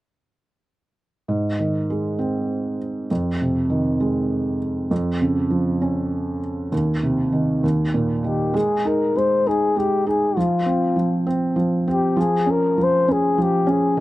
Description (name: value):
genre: pop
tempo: 66 BPM (dotted quarters)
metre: 6/8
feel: straight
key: Ab major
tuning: A4 = 440 Hz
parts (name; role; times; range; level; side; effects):
- felt-muted upright piano; accompaniment; 1.3-14.0 s; Eb2 to Eb4; -20 LUFS; right 1 dB; none
- breathy flugelhorn; melody; 8.3-14.0 s; F4 to C5; -20 LUFS; left 3 dB; none
room: light reverb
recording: recorded outdoors, with no room sound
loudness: -18 LUFS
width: side -16 dB against mid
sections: 1.3-8.6 A section; 8.6-14.0 B section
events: none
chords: 1.3 Ab; 3.1 Fm7; 4.9 Db/F; 6.7 Cm/Eb; 7.6 Eb5; 8.6 Ab5; 10.4 F5; 12.2 Bbm7/F (rootless)